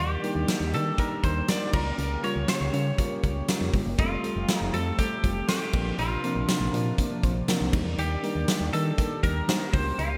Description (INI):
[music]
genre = 1980s-style pop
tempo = 120 BPM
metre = 4/4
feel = straight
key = unclear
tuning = A4 = 445 Hz
[part]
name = twelve-string electric guitar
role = melody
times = 0.0-10.2 s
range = F4 to D5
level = -34 LUFS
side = equal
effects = spring reverb
[part]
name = FM electric piano with soft pad layer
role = accompaniment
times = 0.0-10.2 s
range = F3 to C5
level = -34 LUFS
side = equal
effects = chorus, tremolo
[part]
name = warm analog pad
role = sustained chords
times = 0.0-10.2 s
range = C3 to D5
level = -38 LUFS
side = equal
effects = chorus
[part]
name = solid FM bass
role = bass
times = 0.0-10.2 s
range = F1 to Eb3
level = -32 LUFS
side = equal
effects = none
[part]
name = big rock drum kit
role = drums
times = 0.2-10.1 s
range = crash cymbal, hi-hat, kick drum, snare drum, tambourine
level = -31 LUFS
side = equal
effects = gated reverb
[sound]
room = moderate lush hall reverb, RT60 2.0 s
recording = bright 1980s-style digital production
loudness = -26 LUFS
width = mono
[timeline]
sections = 0.0-10.2 A section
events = none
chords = 0.0 Ebmaj7; 1.7 Bbm6/Db; 4.0 Fadd9; 5.7 Bbadd9; 7.7 Ebmaj7